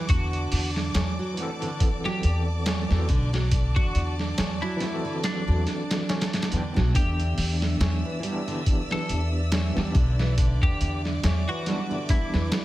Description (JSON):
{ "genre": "trip hop", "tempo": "70 BPM", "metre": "4/4", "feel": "swing 57% on 16ths", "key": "unclear", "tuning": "A4 = 440 Hz", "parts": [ { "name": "warm symphonic violin section", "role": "sustained chords", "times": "0.0-12.6 s", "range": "D5 to E6", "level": "-36 LUFS", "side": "equal", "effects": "none" }, { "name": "nylon-string guitar", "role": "arpeggios", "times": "0.0-12.5 s", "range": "D3 to A3", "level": "-34 LUFS", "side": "right 2 dB", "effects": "tape echo" }, { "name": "semi-hollow electric guitar", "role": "melody", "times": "0.1-12.6 s", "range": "D4 to A4", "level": "-34 LUFS", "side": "left 1 dB", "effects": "analog chorus, tape echo" }, { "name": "upright bass", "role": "bass", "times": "0.1-12.5 s", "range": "B1 to E2", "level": "-25 LUFS", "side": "equal", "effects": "none" }, { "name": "trip hop sampler-style drum kit", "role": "drums", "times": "0.1-12.6 s", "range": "hi-hat, kick drum, snare drum", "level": "-26 LUFS", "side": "equal", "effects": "none" }, { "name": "tabla", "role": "percussion", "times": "1.0-11.4 s", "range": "none", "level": "-41 LUFS", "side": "left 2 dB", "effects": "none" }, { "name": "overdriven tine electric piano", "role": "accompaniment", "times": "1.3-12.6 s", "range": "E3 to G5", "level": "-32 LUFS", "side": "left 1 dB", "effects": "tremolo, vintage 12-bit sampler grit" } ], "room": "small room ambience", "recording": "none", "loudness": "-23 LUFS", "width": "side -16 dB against mid", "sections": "0.0-12.6 A section", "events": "none", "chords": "0.1 D7; 7.0 Em7" }